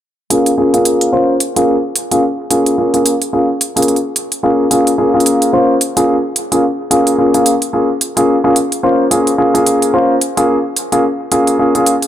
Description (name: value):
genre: glitch hop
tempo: 109 BPM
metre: 4/4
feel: swing 58% on 16ths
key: Bb minor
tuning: A4 = 442 Hz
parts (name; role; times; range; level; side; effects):
- warm grand piano; stabs; 0.3-11.9 s; Bb3 to C5; -11 LUFS; equal; low-pass filter, tape echo
- electronic hi-hat; drums; 0.3-12.1 s; none; -16 LUFS; right 2 dB; none
room: moderate plate reverb, RT60 2.7 s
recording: dark, warm production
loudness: -11 LUFS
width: side -11 dB against mid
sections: 0.3-12.1 A section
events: none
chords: 0.3 Bbm7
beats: | 0.30 0.86 1.41 1.96 | 2.51 3.06 3.61 4.16 | 4.71 5.26 5.81 6.36 | 6.91 7.46 8.01 8.56 | 9.11 9.66 10.21 10.76 | 11.31 11.87